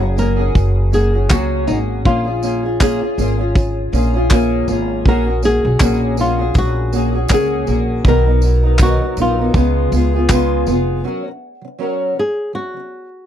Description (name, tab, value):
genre	acoustic pop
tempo	80 BPM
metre	4/4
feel	swing 55% on 16ths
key	F# major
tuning	A4 = 440 Hz
part	flamenco guitar	melody	0.0-13.3 s	D#4 to A#4	-21 LUFS	left 1 dB	none
part	fingerpicked acoustic archtop guitar	accompaniment	0.0-13.1 s	B2 to A#4	-18 LUFS	equal	double-tracked left and right
part	upright bass	bass	0.0-11.0 s	E#1 to C#2	-17 LUFS	equal	none
part	modern studio drum kit	drums	0.2-10.9 s	handclaps, kick drum, tambourine	-15 LUFS	equal	none
part	tambourine	percussion	0.2-10.9 s	none	-36 LUFS	right 16 dB	none
room	little or no reverb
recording	dry, close 1970s-style studio recording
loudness	-13 LUFS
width	side -10 dB against mid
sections	0.0-11.0 A section; 11.0-13.3 B section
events	none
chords	0.0 F#add9; 2.1 A#m7; 5.1 F#add9/A#; 8.0 Bmaj7; 9.5 C#7; 11.0 F#